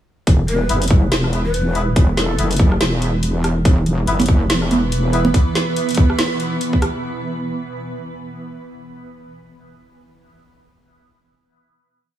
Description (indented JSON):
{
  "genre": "deep dubstep",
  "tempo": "142 BPM",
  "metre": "4/4",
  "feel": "swing 58% on 16ths, half-time",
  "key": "unclear",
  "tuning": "A4 = 441 Hz",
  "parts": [
    { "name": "wobble bass", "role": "bass", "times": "0.3-5.3 s", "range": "E1 to F#1", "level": "-18 LUFS", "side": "equal", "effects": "chorus" },
    { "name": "electronic kick drum", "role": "drums", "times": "0.3-6.8 s", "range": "none", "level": "-13 LUFS", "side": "equal", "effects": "none" },
    { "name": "garage drum kit", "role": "drums", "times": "0.3-6.9 s", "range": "hi-hat, rim click, snare drum", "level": "-23 LUFS", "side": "equal", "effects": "none" },
    { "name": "breathy ney", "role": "melody", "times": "0.5-2.5 s", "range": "A4 to B4", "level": "-26 LUFS", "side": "left 2 dB", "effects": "dub echo" },
    { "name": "melodica", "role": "stabs", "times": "0.7-5.2 s", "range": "B3 to B4", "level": "-28 LUFS", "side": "left 3 dB", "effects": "dub echo" },
    { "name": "granular cloud pad", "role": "sustained chords", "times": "4.1-7.0 s", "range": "E3 to B4", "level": "-23 LUFS", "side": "right 3 dB", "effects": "built-in reverb" },
    { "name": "congas", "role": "percussion", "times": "4.2-5.3 s", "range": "none", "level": "-21 LUFS", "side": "right 4 dB", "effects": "dub echo" }
  ],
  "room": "light reverb, small room reverb",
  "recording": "small room ambience",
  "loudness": "-15 LUFS",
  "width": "side -12 dB against mid",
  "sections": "0.3-7.0 drop",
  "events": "drop 0.3-7.0",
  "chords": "0.3 E5",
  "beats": "| 0.27 0.69 1.12 1.54 | 1.96 2.38 2.81 3.23 | 3.65 4.07 4.50 4.92 | 5.34 5.76 6.19 6.61"
}